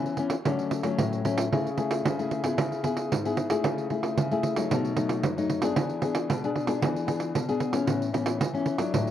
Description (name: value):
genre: samba and choro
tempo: 113 BPM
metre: 4/4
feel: straight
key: A major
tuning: A4 = 443 Hz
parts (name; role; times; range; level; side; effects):
- nylon-string guitar; accompaniment; 0.0-9.1 s; F#2 to G#4; -27 LUFS; left 4 dB; none
- pandeiro; percussion; 0.1-9.1 s; none; -28 LUFS; right 4 dB; none
room: wet spring reverb, RT60 1.9 s, small room ambience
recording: cassette tape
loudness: -25 LUFS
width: side -11 dB against mid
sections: 0.0-9.1 A section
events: none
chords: 0.5 Dmaj7; 1.5 Amaj7/C#; 2.6 C#m7; 3.6 Amaj7/C#; 4.7 B7; 5.8 E7; 7.9 Aadd9